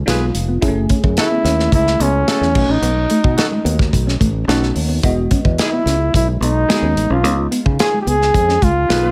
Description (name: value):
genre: polished 1980s jazz-funk pop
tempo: 109 BPM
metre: 4/4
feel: straight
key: E major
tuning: A4 = 440 Hz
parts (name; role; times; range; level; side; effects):
- bell-like FM electric piano; accompaniment; 0.0-9.1 s; G#3 to D#5; -25 LUFS; equal; phaser, subtle chorus
- fingered electric bass; bass; 0.0-9.1 s; E1 to C#3; -21 LUFS; equal; none
- mellow horn section; second line; 0.1-9.1 s; G#3 to B4; -28 LUFS; equal; none
- modern studio drum kit; drums; 0.1-9.0 s; crash cymbal, hi-hat, kick drum, snare drum; -21 LUFS; equal; none
- mellow electric guitar; riff; 0.2-9.1 s; G#3 to E4; -25 LUFS; equal; analog chorus
- warm flugelhorn; melody; 1.2-9.1 s; C#4 to G#4; -20 LUFS; equal; none
room: small room ambience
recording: none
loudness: -16 LUFS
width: mono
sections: 0.0-9.1 A section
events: none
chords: 0.0 C#7 (rootless); 0.6 F#m7; 2.6 B7; 5.0 Emaj7; 7.2 C#7